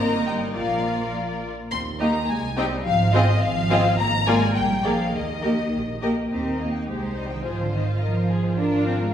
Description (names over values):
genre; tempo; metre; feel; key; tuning
quick classical-period movement for string orchestra; 105 BPM; 2/4; straight; Eb major; A4 = 438 Hz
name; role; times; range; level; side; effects
warm studio violin section; melody; 0.0-9.1 s; F4 to C6; -26 LUFS; left 4 dB; none
rich studio violin section; second line; 0.0-9.1 s; G4 to G5; -30 LUFS; left 2 dB; none
rich studio viola section; accompaniment; 0.0-9.1 s; Bb3 to Ab4; -27 LUFS; equal; none
rich studio double bass section; bass; 0.0-9.1 s; G1 to Eb2; -27 LUFS; right 2 dB; none
warm studio cello section; bass; 0.0-9.1 s; D3 to D4; -27 LUFS; right 2 dB; none
room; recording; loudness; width
wet recital hall reverb, RT60 1.6 s; heard from further back in the room; -20 LUFS; side -9 dB against mid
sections
0.0-6.3 A section; 6.3-9.1 A section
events
none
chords
0.0 Eb/G; 0.6 Bb; 1.7 Eb; 2.3 Cm; 2.9 Fm7/Ab; 4.0 Bb7/Ab; 4.6 Bb7; 5.1 Eb; 6.9 Cm; 7.5 Fm7/Ab; 8.6 Bb7/Ab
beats
| 0.55 1.13 | 1.71 2.29 | 2.85 3.42 | 3.98 4.55 | 5.14 5.73 | 6.32 6.89 | 7.46 8.03 | 8.59